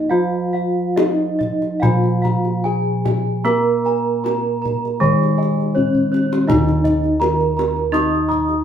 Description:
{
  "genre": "Javanese gamelan",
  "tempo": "68-83 BPM",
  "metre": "4/4",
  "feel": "straight",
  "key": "Eb slendro",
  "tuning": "A4 = 440 Hz",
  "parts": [
    { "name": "gamelan-type bronze metallophone", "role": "melody", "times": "0.0-8.6 s", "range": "Db4-45c to Eb5", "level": "-21 LUFS", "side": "right 1 dB", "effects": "none" },
    { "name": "gamelan-type bronze metallophone", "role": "accompaniment", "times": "0.0-8.6 s", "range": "Eb3 to Eb4", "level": "-22 LUFS", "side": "right 2 dB", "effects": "none" },
    { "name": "gamelan-type bronze metallophone", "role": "arpeggios", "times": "0.0-8.6 s", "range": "Db5-45c to Eb6", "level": "-26 LUFS", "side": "right 3 dB", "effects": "none" },
    { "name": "gamelan-type bossed gongs", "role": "bass", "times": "0.0-8.6 s", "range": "Eb2 to Bb4+25c", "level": "-21 LUFS", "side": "equal", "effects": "none" },
    { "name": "gamelan-type bossed gongs", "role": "arpeggios", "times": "0.1-8.6 s", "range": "Db5-45c to Db6-45c", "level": "-26 LUFS", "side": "left 5 dB", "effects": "none" },
    { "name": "kendang", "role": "percussion", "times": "1.0-8.6 s", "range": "none", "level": "-25 LUFS", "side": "left 2 dB", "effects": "none" }
  ],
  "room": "moderate studio reverb, RT60 0.7 s",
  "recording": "band playing live in one room",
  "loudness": "-16 LUFS",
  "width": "side -9 dB against mid",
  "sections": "0.0-6.5 A section; 6.5-8.6 B section",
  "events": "drum fill 5.9-6.5",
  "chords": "none",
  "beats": "| 0.12 0.98 1.83 2.66 | 3.46 4.25 5.01 5.76 | 6.49 7.21 7.94"
}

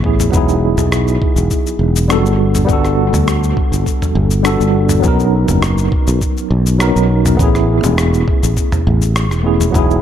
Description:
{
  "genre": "sunset chillout",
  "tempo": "102 BPM",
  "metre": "4/4",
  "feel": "straight",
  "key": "unclear",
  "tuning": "A4 = 440 Hz",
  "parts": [
    { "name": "tine electric piano", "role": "accompaniment", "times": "0.0-10.0 s", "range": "F#3 to A#4", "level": "-16 LUFS", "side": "equal", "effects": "overdrive, fast stereo tremolo, auto-pan, tape echo" },
    { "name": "sustaining fretless electric bass", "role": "bass", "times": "0.0-10.0 s", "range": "E1 to D2", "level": "-14 LUFS", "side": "equal", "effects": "none" },
    { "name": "electronic kick drum", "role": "drums", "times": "0.0-9.9 s", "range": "none", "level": "-16 LUFS", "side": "equal", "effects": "studio reverb" },
    { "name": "dusty soul sampler-style drum kit", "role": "drums", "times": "0.2-10.0 s", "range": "cabasa, rim click, toms", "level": "-21 LUFS", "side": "equal", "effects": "studio reverb, dub echo" },
    { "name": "bongos", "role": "percussion", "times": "7.8-7.9 s", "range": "none", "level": "-27 LUFS", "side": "left 6 dB", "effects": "none" }
  ],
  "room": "light reverb",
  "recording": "echo-heavy mix",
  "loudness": "-11 LUFS",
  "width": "side -10 dB against mid",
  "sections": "0.0-10.0 A section",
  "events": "none",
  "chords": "0.3 Emaj9; 2.4 Gmaj9; 5.0 Bmaj9; 7.4 Amaj9",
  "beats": "| 0.33 0.92 1.51 2.10 | 2.69 3.27 3.86 4.45 | 5.04 5.63 6.21 6.80 | 7.39 7.98 8.57 9.16 | 9.74"
}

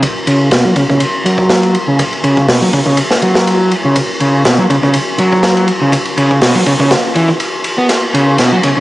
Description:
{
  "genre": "breakbeat, breaks",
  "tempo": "122 BPM",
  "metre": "4/4",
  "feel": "swing 53% on 16ths",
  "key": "C# minor pentatonic",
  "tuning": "A4 = 441 Hz",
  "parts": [
    { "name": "crunchy breakbeat drum kit", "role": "drums", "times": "0.0-8.8 s", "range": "hi-hat, kick drum, ride cymbal, snare drum", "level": "-13 LUFS", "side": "equal", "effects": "high-pass filter on kick, high-pass filter on cymbals, high-pass filter on hats, high-pass filter on snare, high-pass filter on room" },
    { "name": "crunchy overdriven guitar", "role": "riff", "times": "0.3-8.8 s", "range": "B2 to B3", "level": "-12 LUFS", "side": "equal", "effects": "tube saturation, low-pass filter, ping-pong delay" }
  ],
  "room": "moderate plate reverb, RT60 2.0 s, studio reverb",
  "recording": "vinyl crackle, high-pass filter, nothing above 10.7 kHz",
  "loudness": "-9 LUFS",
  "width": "side -17 dB against mid",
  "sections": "0.0-8.8 A section",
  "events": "build-up 0.0-8.8; filter sweep on overdriven electric guitar 0.0-8.8; drum fill 7.9-8.8",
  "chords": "none",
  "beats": "| 0.03 0.52 1.01 1.50 | 1.99 2.49 2.98 3.47 | 3.96 4.45 4.95 5.44 | 5.93 6.42 6.91 7.40 | 7.90 8.39"
}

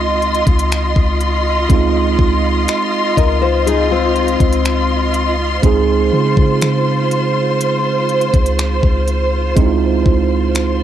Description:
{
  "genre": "contemporary R&B",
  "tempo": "61 BPM",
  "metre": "4/4",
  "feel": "straight",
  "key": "Db major",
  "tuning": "A4 = 440 Hz",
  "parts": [
    { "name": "tine electric piano", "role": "accompaniment", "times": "0.0-10.8 s", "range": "Ab3 to Ab4", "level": "-19 LUFS", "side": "right 9 dB", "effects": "fast stereo tremolo, cassette tape" },
    { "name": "rich studio string section", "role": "sustained chords", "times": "0.0-10.8 s", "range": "F4 to C6", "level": "-18 LUFS", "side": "equal", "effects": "sidechain pumping, cassette tape" },
    { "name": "soft 808-style bass", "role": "bass", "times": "0.0-10.8 s", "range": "Db2 to Db3", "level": "-18 LUFS", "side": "left 1 dB", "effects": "none" },
    { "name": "trap drum kit", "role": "drums", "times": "0.2-10.8 s", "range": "finger snaps, hi-hat, kick drum", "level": "-15 LUFS", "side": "left 1 dB", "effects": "none" },
    { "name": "nylon-string guitar", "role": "arpeggios", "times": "3.2-5.3 s", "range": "C4 to Eb5", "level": "-17 LUFS", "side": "left 10 dB", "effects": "cassette tape, tape echo" }
  ],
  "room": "light reverb",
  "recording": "home recording on cassette",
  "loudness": "-12 LUFS",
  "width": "side -10 dB against mid",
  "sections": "0.0-10.8 A section",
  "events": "none",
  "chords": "0.0 Dbmaj9",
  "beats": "0.71 | 1.70 2.68 3.66 4.65 | 5.63 6.61 7.60 8.58 | 9.56 10.55"
}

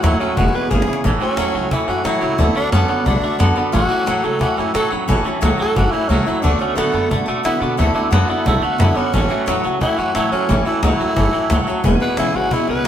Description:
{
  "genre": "rockabilly",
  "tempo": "178 BPM",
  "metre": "4/4",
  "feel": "straight",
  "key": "A major",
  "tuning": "A4 = 439 Hz",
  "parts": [
    { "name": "growling tenor saxophone", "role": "melody", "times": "0.0-12.9 s", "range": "A3 to B4", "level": "-21 LUFS", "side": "equal", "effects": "none" },
    { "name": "picked steel-string acoustic guitar", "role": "accompaniment", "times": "0.0-12.9 s", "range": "A2 to A4", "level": "-24 LUFS", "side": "left 2 dB", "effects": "none" },
    { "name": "warm upright piano", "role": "accompaniment", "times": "0.0-12.9 s", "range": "B4 to B5", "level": "-28 LUFS", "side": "left 1 dB", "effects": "none" },
    { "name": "twangy electric guitar", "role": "riff", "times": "0.0-12.9 s", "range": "E2 to B3", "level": "-21 LUFS", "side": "right 2 dB", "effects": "harmonic tremolo" },
    { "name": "upright bass", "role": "bass", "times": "0.0-12.9 s", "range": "E1 to D3", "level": "-20 LUFS", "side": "equal", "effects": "none" },
    { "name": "cajon", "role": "drums", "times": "0.0-12.9 s", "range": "none", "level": "-26 LUFS", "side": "equal", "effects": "none" }
  ],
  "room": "moderate stone room reverb, RT60 1.2 s",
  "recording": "band playing live in one room",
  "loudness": "-15 LUFS",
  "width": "side -10 dB against mid",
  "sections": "0.0-1.0 A section; 1.0-12.9 B section",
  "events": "drum fill 0.4-1.0; tenor saxophone solo 1.0-12.9; kick and snare drop out 6.1-6.4",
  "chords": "0.4 E6; 1.0 A6; 2.4 D6; 3.7 A6; 6.4 D6; 9.1 A6; 11.8 E6",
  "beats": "0.03 0.37 0.70 | 1.04 1.38 1.71 2.05 | 2.39 2.73 3.06 3.40 | 3.74 4.07 4.41 4.75 | 5.08 5.42 5.76 6.10 | 6.43 6.77 7.11 7.45 | 7.79 8.12 8.46 8.80 | 9.14 9.47 9.81 10.15 | 10.49 10.83 11.17 11.50 | 11.84 12.18 12.52 12.86"
}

